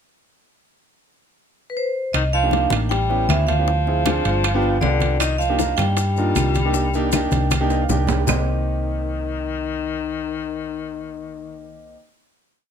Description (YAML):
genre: Afro-Cuban jazz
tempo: 156 BPM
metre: 4/4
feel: straight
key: C minor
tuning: A4 = 440 Hz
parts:
  - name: vibraphone with medium hard mallets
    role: melody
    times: 1.7-11.9 s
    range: B4 to G5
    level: -26 LUFS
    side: right 3 dB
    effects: none
  - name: warm baritone saxophone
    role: second line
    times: 2.1-11.9 s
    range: D3 to G3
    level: -27 LUFS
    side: left 9 dB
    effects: none
  - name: hollow-body short-scale fingered electric bass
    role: bass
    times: 2.1-11.9 s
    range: G1 to G2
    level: -22 LUFS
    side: equal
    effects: none
  - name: bongos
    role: percussion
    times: 2.1-8.4 s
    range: none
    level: -28 LUFS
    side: left 12 dB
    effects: none
  - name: claves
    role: percussion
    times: 2.1-8.4 s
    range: none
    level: -29 LUFS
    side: right 9 dB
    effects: none
  - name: congas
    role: percussion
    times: 2.1-8.4 s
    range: none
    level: -28 LUFS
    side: equal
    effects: none
  - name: timbales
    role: percussion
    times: 2.1-8.4 s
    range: none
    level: -28 LUFS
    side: right 7 dB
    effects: none
  - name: warm concert grand piano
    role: accompaniment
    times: 2.4-12.0 s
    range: Bb3 to G5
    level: -25 LUFS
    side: equal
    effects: none
  - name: maracas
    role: percussion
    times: 5.2-8.4 s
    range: none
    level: -32 LUFS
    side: left 7 dB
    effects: none
room: light reverb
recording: close, detailed microphones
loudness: -18 LUFS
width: side -7 dB against mid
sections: 0.6-2.1 pickup bar; 2.1-8.3 A section; 8.3-11.3 final chord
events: drum fill 7.3-8.3; grand piano fill 7.5-8.3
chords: 0.6 N.C.; 2.1 Cm7; 2.9 A7; 3.7 Dm7b5; 4.5 G7; 5.2 Cm7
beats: | 0.61 0.99 1.38 1.76 | 2.15 2.53 2.92 3.30 | 3.68 4.07 4.45 4.84 | 5.22 5.60 5.99 6.37 | 6.75 7.14 7.52 7.90 | 8.28 8.67 9.05 9.43 | 9.81 10.20 10.58 10.96